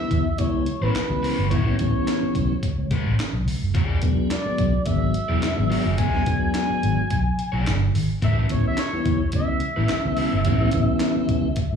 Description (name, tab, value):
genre	funk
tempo	107 BPM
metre	4/4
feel	straight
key	unclear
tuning	A4 = 438 Hz
part	expressive synth lead	melody	0.0-11.8 s	B4 to G#5	-28 LUFS	left 1 dB	chorus, slapback echo
part	mellow tonewheel organ	stabs	0.0-11.5 s	E3 to E4	-25 LUFS	equal	slow rotary speaker, slapback echo
part	vintage muted fingered electric bass	bass	0.1-11.8 s	E1 to A2	-23 LUFS	equal	none
part	breakbeat sampler-style drum kit	drums	0.1-11.7 s	handclaps, hi-hat, kick drum, snare drum	-26 LUFS	equal	none
part	crunchy overdriven guitar	accompaniment	0.8-10.7 s	C#4 to E5	-32 LUFS	left 7 dB	slapback echo
room	digital ambience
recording	live gig heard through the venue's PA, club reverb, studio reverb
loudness	-20 LUFS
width	side -7 dB against mid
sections	0.0-11.8 A section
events	tonewheel organ fill 11.6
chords	0.0 A9; 3.8 E9; 8.2 A9